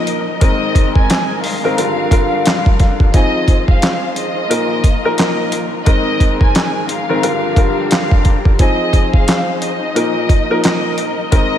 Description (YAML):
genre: hip hop, boom-bap hip-hop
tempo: 88 BPM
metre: 4/4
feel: swing 60% on 16ths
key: unclear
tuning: A4 = 441 Hz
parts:
  - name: warm studio violin section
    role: melody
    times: 0.0-11.6 s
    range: Eb5 to Ab5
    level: -21 LUFS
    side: equal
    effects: high-pass filter, low-pass filter
  - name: clear upright piano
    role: accompaniment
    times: 0.0-11.6 s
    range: G2 to Bb4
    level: -18 LUFS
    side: left 2 dB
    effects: high-pass filter, low-pass filter
  - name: muted studio string section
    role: sustained chords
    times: 0.0-11.6 s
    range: Eb3 to F5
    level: -24 LUFS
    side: left 2 dB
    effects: high-pass filter, low-pass filter
  - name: dusty soul sampler-style drum kit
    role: drums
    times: 0.1-11.5 s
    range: handclaps, hi-hat, kick drum, snare drum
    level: -14 LUFS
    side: equal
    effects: none
room: moderate lush hall reverb, RT60 3.0 s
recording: dreamy mix soaked in reverb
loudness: -12 LUFS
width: side -10 dB against mid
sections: 0.0-11.6 A section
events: none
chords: 0.4 Abadd9; 1.8 Gm7; 3.1 Fm7; 4.5 Bbsus4; 5.9 Abadd9; 7.2 Gm7; 8.6 Fm7; 10.0 Bbsus4